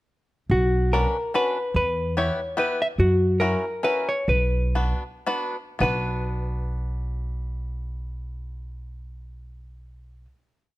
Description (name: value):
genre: musette waltz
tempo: 106-146 BPM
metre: 3/4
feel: swing 55% on 8ths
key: B harmonic minor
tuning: A4 = 440 Hz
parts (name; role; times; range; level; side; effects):
- hollow-body jazz guitar; melody; 0.5-10.3 s; F#4 to E5; -24 LUFS; left 1 dB; none
- upright bass; bass; 0.5-10.2 s; B1 to F#2; -25 LUFS; equal; none
- bluegrass banjo; accompaniment; 0.9-10.3 s; B3 to B4; -29 LUFS; left 2 dB; none
room: light reverb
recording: close, detailed microphones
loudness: -22 LUFS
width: side -18 dB against mid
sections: 0.5-5.8 A section; 5.8-9.2 final chord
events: slowing down 3.0-5.8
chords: 0.5 Bmadd9; 1.8 Em; 3.0 F#7; 4.3 Bm